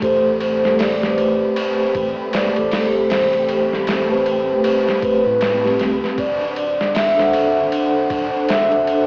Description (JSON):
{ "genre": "trip hop", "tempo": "78 BPM", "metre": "4/4", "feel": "swing 60% on 16ths", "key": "A dorian", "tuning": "A4 = 441 Hz", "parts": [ { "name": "pure breathy sine lead", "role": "melody", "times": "0.0-9.0 s", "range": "B4 to E5", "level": "-20 LUFS", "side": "equal", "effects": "lush chorus, tape echo" }, { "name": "vibraphone with medium mallets", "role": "accompaniment", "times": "0.0-9.1 s", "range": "A3 to F#5", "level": "-18 LUFS", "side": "equal", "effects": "harmonic tremolo, cassette tape" }, { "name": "string machine, cellos", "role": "sustained chords", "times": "0.0-9.1 s", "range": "A3 to B5", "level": "-26 LUFS", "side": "equal", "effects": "ensemble chorus, vintage 12-bit sampler grit, cassette tape" }, { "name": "warm sub bass", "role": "bass", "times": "0.0-8.9 s", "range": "D1 to A2", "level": "-34 LUFS", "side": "equal", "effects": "none" }, { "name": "trip hop sampler-style drum kit", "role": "drums", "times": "0.0-9.1 s", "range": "hi-hat, kick drum, ride cymbal, snare drum", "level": "-24 LUFS", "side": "equal", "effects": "cassette tape" } ], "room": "light reverb", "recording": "home recording on cassette, vinyl crackle, small speaker sound", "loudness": "-15 LUFS", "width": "side -33 dB against mid", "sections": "0.0-9.1 A section", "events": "none", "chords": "0.0 Am9; 6.2 D7", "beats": "| 0.02 0.79 1.56 2.33 | 3.10 3.87 4.64 5.41 | 6.17 6.95 7.71 8.48" }